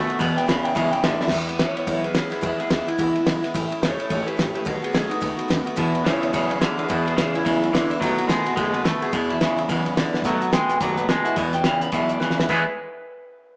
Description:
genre	rockabilly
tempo	215 BPM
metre	4/4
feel	swing 60% on 8ths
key	E major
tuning	A4 = 440 Hz
part	picked steel-string acoustic guitar	accompaniment	0.0-12.6 s	E2 to F#4	-27 LUFS	equal	none
part	twangy electric guitar	riff	0.0-1.3, 5.8-12.6 s	E2 to G#4	-23 LUFS	equal	spring reverb
part	upright bass	bass	0.0-12.7 s	F#1 to E2	-33 LUFS	equal	none
part	cloth-damped thuddy drum kit	drums	0.1-12.6 s	crash cymbal, hi-hat, kick drum, ride cymbal, snare drum, toms	-25 LUFS	equal	none
part	electric guitar through a small old amp	melody	0.2-12.7 s	B3 to B5	-26 LUFS	equal	spring reverb
room	wet studio reverb, RT60 0.8 s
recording	band playing live in one room, small speaker sound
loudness	-19 LUFS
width	side -36 dB against mid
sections	0.0-1.3 A section; 1.3-10.3 B section; 10.3-12.5 C section; 12.5-13.6 D section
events	clean electric guitar solo 0.0-1.3; drum fill 1.2, 10.1, 12.2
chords	0.2 E; 3.5 A; 4.7 B7; 5.8 E; 8.0 B7; 9.1 E; 10.3 B7; 11.4 E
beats	| 0.21 0.48 0.76 1.04 | 1.32 1.60 1.87 2.15 | 2.43 2.71 2.99 3.27 | 3.54 3.82 4.10 4.38 | 4.66 4.94 5.22 5.50 | 5.78 6.06 6.34 6.62 | 6.90 7.18 7.46 7.74 | 8.01 8.29 8.57 8.85 | 9.13 9.41 9.69 9.97 | 10.25 10.53 10.81 11.09 | 11.37 11.65 11.93 12.21 | 12.49

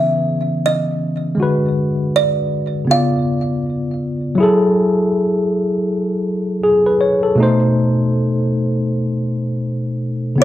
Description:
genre	lo-fi hip hop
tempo	80 BPM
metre	4/4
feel	swing 60% on 16ths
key	unclear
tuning	A4 = 440 Hz
part	kalimba	melody	0.0-4.0, 10.4 s	D5 to E#5	-18 LUFS	right 3 dB	plate reverb, analog delay
part	tine electric piano	accompaniment	0.0-10.4 s	B2 to D5	-15 LUFS	left 1 dB	medium stereo tremolo, cassette tape
room	wet studio reverb, RT60 0.6 s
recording	none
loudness	-15 LUFS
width	side -13 dB against mid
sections	0.0-10.4 A section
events	none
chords	0.0 C#m9; 1.4 G#m7b5; 2.9 C#7b9; 4.4 F#m9; 7.4 B7b9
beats	0.63 | 1.38 2.13 2.88 3.63 | 4.38 5.13 5.88 6.63 | 7.38 8.13 8.88 9.63 | 10.38

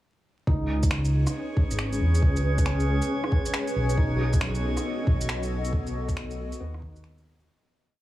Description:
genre	future garage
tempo	137 BPM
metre	4/4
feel	swing 64% on 16ths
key	unclear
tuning	A4 = 441 Hz
part	felt-muted upright piano	accompaniment	0.5-7.5 s	B3 to F#4	-35 LUFS	equal	vintage 12-bit sampler grit, sidechain pumping, digital delay
part	granular cloud pad	sustained chords	1.1-7.4 s	B3 to D#5	-32 LUFS	equal	built-in reverb, vintage 12-bit sampler grit, sidechain pumping
part	dark detuned saw bass	bass	0.5-7.5 s	G#1 to E2	-26 LUFS	equal	sidechain pumping
part	electronic kick drum	drums	0.5-6.9 s	none	-24 LUFS	equal	overdrive
part	drifting glass-harmonics texture	texture	1.2-7.5 s	C#5	-38 LUFS	right 2 dB	chorus, built-in reverb
part	electronic shaker, finger snaps and rim click	drums	0.8-7.5 s	none	-35 LUFS	equal	overdrive
room	digital ambience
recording	heavily compressed radio sound, vinyl crackle, small room ambience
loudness	-23 LUFS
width	side -15 dB against mid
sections	0.5-7.5 groove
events	fade-out 5.1-7.5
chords	0.5 C#7(no3); 4.0 B7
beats	| 0.47 0.91 1.35 1.78 | 2.22 2.66 3.10 3.54 | 3.98 4.41 4.85 5.29 | 5.73 6.16 6.60 7.04

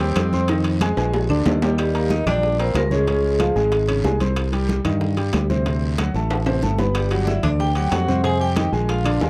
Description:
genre	Afro-Cuban jazz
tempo	186 BPM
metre	4/4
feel	straight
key	Eb major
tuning	A4 = 443 Hz
part	clear tenor saxophone	second line	0.0-4.2, 7.0-9.3 s	G3 to Ab4	-33 LUFS	equal	none
part	clear baby grand piano	accompaniment	0.0-9.3 s	C3 to C6	-27 LUFS	equal	none
part	fingered electric bass	bass	0.0-9.3 s	G1 to G2	-24 LUFS	equal	none
part	congas	percussion	0.0-9.3 s	none	-31 LUFS	equal	none
part	timbales	percussion	0.0-9.3 s	none	-30 LUFS	equal	none
part	bongos	percussion	0.2-9.3 s	none	-35 LUFS	equal	none
part	claves	percussion	0.2-9.2 s	none	-40 LUFS	equal	none
part	guiro	percussion	0.2-9.3 s	none	-42 LUFS	equal	none
part	vibraphone with medium hard mallets	melody	1.8-4.2, 7.0-9.3 s	G4 to Ab5	-26 LUFS	equal	none
room	light reverb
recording	dry, close 1970s-style studio recording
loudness	-20 LUFS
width	mono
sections	0.0-1.8 A section; 1.8-9.3 B section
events	tenor saxophone solo 0.0-1.8; drum fill 1.0-1.8, 6.3-7.0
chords	0.5 Fm7; 1.1 Bb7; 1.8 Ebmaj7; 3.1 Db; 4.4 Cmadd9; 5.7 D7; 7.0 Gmaj7; 8.2 Fm7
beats	0.17 | 0.49 0.81 1.13 1.46 | 1.78 2.10 2.43 2.75 | 3.07 3.40 3.72 4.04 | 4.37 4.69 5.01 5.33 | 5.66 5.98 6.30 6.63 | 6.95 7.27 7.60 7.92 | 8.24 8.57 8.89 9.21

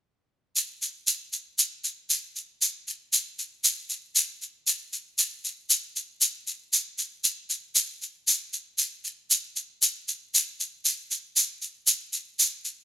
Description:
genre	bossa nova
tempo	117 BPM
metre	4/4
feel	straight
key	none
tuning	none
part	egg shaker	percussion	0.6-12.8 s	none	-22 LUFS	equal	none
room	light reverb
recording	dark, warm production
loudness	-24 LUFS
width	side -12 dB against mid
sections	0.6-8.8 A section; 8.8-12.8 B section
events	none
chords	none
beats	| 0.56 1.07 1.58 2.10 | 2.61 3.13 3.64 4.16 | 4.67 5.18 5.70 6.21 | 6.73 7.24 7.76 8.27 | 8.79 9.30 9.82 10.33 | 10.85 11.36 11.88 12.39

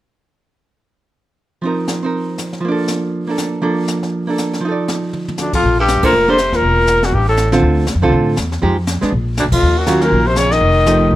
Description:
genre	jazz, small-group swing and bop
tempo	240 BPM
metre	4/4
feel	swing 59% on 8ths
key	Bb major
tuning	A4 = 441 Hz
part	archtop guitar, miked and amplified	accompaniment	1.6-11.2 s	D3 to D5	-17 LUFS	right 2 dB	none
part	jazz brush drum kit	drums	1.6-11.2 s	brushed snare drum, crash cymbal, hi-hat, kick drum, ride cymbal, snare drum, toms	-24 LUFS	left 1 dB	none
part	warm trumpet	melody	5.4-11.2 s	D4 to Eb5	-15 LUFS	left 3 dB	plate reverb
part	warm baritone saxophone	second line	5.4-11.2 s	D2 to Eb3	-18 LUFS	right 2 dB	none
part	upright bass	bass	5.6-11.2 s	Fb1 to A2	-17 LUFS	equal	none
room	light reverb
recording	none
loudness	-13 LUFS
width	side -15 dB against mid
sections	1.6-5.6 A section; 5.6-11.2 B section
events	drum fill 5.1; band accent 6.0, 9.5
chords	1.6 F7sus4; 2.6 Bbmaj7/F; 4.6 F6; 5.6 Bbmaj9; 6.6 Gb7/Fb; 7.1 Am7; 7.6 Dm7; 8.6 Fm9; 9.1 Bb; 9.6 Ebm9; 10.6 F9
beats	| 1.63 1.88 2.13 2.38 | 2.63 2.88 3.13 3.38 | 3.63 3.88 4.13 4.38 | 4.63 4.88 5.13 5.38 | 5.63 5.88 6.13 6.38 | 6.63 6.88 7.13 7.38 | 7.63 7.88 8.12 8.37 | 8.62 8.87 9.12 9.37 | 9.62 9.87 10.12 10.37 | 10.62 10.87 11.12

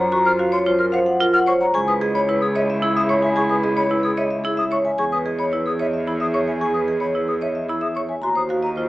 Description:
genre	classical, minimalist pattern music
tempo	111 BPM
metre	3/4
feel	straight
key	unclear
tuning	A4 = 440 Hz
part	vibraphone with medium hard mallets	melody	0.0-8.9 s	Ab4 to Bb5	-23 LUFS	left 2 dB	none
part	warm clarinet	second line	0.0-8.9 s	Fb4 to G#4	-27 LUFS	right 1 dB	none
part	marimba with hard mallets	arpeggios	0.0-8.9 s	Fb4 to Db5	-23 LUFS	right 2 dB	none
part	mellow hollow silver concert flute	arpeggios	0.0-8.7 s	Fb5 to F6	-24 LUFS	left 1 dB	none
part	rich cello	bass	0.0-8.9 s	Db2 to Gb2	-27 LUFS	right 1 dB	none
room	light reverb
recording	small speaker sound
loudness	-18 LUFS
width	side -17 dB against mid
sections	0.0-8.9 A section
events	none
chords	0.0 Gbmaj7; 1.7 Dbm7; 5.0 E6; 8.2 Ebmadd9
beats	| 0.12 0.66 1.20 | 1.74 2.28 2.82 | 3.36 3.90 4.44 | 4.98 5.53 6.07 | 6.61 7.15 7.69 | 8.23 8.77

